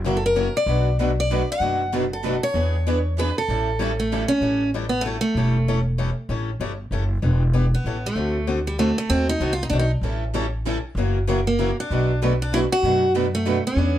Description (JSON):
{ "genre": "acoustic string swing (jazz manouche)", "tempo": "192 BPM", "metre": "3/4", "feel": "swing 60% on 8ths", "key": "A mixolydian", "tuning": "A4 = 445 Hz", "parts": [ { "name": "picked steel-string acoustic guitar", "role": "accompaniment", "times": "0.0-14.0 s", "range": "B2 to A4", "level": "-27 LUFS", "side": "left 4 dB", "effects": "none" }, { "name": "upright bass", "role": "bass", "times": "0.0-14.0 s", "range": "E1 to F#2", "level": "-23 LUFS", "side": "equal", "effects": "none" }, { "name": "picked steel-string acoustic guitar", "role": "accompaniment", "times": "0.1-4.2, 10.0-14.0 s", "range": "B2 to B4", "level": "-28 LUFS", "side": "right 7 dB", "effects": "none" }, { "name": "picked steel-string acoustic guitar", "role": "melody", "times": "0.2-14.0 s", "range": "G3 to F#5", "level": "-23 LUFS", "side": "equal", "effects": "none" } ], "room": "light reverb", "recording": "dark, warm production", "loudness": "-20 LUFS", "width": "side -12 dB against mid", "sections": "0.0-4.4 A section; 4.4-14.0 A section", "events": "none", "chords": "0.0 F#7; 0.7 Bm7; 2.5 E7; 3.5 A7; 7.2 Em7; 7.9 A7; 8.2 D7; 9.1 D#dim7; 10.0 A7; 11.0 F#7; 11.9 Bm7" }